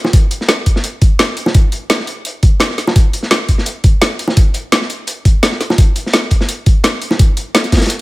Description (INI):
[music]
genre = drum and bass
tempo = 170 BPM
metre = 4/4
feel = swing 53% on 16ths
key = none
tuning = none
[part]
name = bongos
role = percussion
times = 0.0-7.2 s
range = none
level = -18 LUFS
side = right 1 dB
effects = none
[part]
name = crunchy breakbeat drum kit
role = drums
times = 0.1-8.0 s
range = hi-hat, snare drum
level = -19 LUFS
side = equal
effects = high-pass filter on hats, small room reverb, high-pass filter on snare, high-pass filter on room
[part]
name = drum and bass drum kit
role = drums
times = 0.1-8.0 s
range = hi-hat, snare drum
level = -16 LUFS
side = equal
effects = overdrive, small room reverb
[part]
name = electronic kick drum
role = drums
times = 0.1-7.8 s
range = none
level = -10 LUFS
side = equal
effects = overdrive, small room reverb
[sound]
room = studio reverb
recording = none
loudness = -11 LUFS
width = side -20 dB against mid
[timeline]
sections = 0.0-8.0 A section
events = none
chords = none